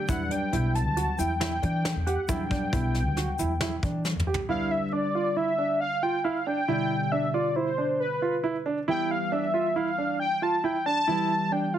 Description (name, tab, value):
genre	progressive instrumental, band music in an uneven meter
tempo	136 BPM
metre	5/4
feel	straight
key	G mixolydian from 4.5 s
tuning	A4 = 440 Hz
part	warm velvety synth lead	melody	0.0-11.8 s	B4 to A5	-28 LUFS	left 1 dB	chorus
part	hollow-body jazz guitar	accompaniment	0.0-11.8 s	B2 to G4	-33 LUFS	left 2 dB	double-tracked left and right
part	warm concert grand piano	arpeggios	0.1-11.8 s	D4 to G4	-30 LUFS	right 5 dB	none
part	upright bass	bass	0.1-4.4 s	B1 to E3	-29 LUFS	left 1 dB	none
part	soft brush drum kit	drums	0.1-4.4 s	hi-hat, kick drum, snare drum, toms	-32 LUFS	left 1 dB	none
part	egg shaker	percussion	0.1-4.2 s	none	-40 LUFS	left 5 dB	none
room	moderate studio reverb, RT60 0.6 s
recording	heavily compressed radio sound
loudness	-24 LUFS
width	side -10 dB against mid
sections	0.0-4.5 A section; 4.5-11.8 B section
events	drum fill 4.0-4.5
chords	0.1 Em7; 4.5 G; 8.9 Em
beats	| 0.08 0.53 0.97 1.41 1.85 | 2.29 2.73 3.17 3.61 4.05 | 4.49 4.93 5.37 5.81 6.25 | 6.68 7.12 7.56 8.00 8.44 | 8.88 9.32 9.76 10.20 10.64 | 11.08 11.52